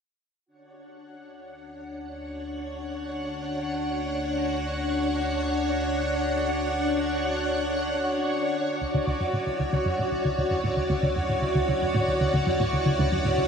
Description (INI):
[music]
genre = ambient, sequencer-driven space music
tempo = 115 BPM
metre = 4/4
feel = straight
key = unclear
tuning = A4 = 441 Hz
[part]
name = string machine, full ensemble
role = sustained chords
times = 0.5-13.5 s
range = D4 to F#5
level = -26 LUFS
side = equal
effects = ensemble chorus
[part]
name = analog drone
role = bass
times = 1.9-13.5 s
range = D2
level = -35 LUFS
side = equal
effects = chorus
[part]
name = bubbling stepped-filter texture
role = texture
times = 0.5-13.5 s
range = E4 to F#5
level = -38 LUFS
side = right 2 dB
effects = chorus, built-in reverb
[part]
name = analog pluck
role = riff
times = 8.8-13.4 s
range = D2 to A2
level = -26 LUFS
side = equal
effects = chorus, cassette tape, analog delay
[part]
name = concert harp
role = arpeggios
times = 8.9-13.5 s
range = E4 to E5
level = -46 LUFS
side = left 1 dB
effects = none
[sound]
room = wet plate reverb, RT60 2.8 s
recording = dreamy mix soaked in reverb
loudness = -24 LUFS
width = side -6 dB against mid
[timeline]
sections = 0.5-8.8 A section; 8.8-13.5 B section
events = fade-in on string machine 0.5-8.8; fade-in on synth drone 0.5-8.8; fade-in on synth texture 0.5-8.8; filter sweep on synth arpeggio sound 8.8-13.5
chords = 0.5 Dmaj7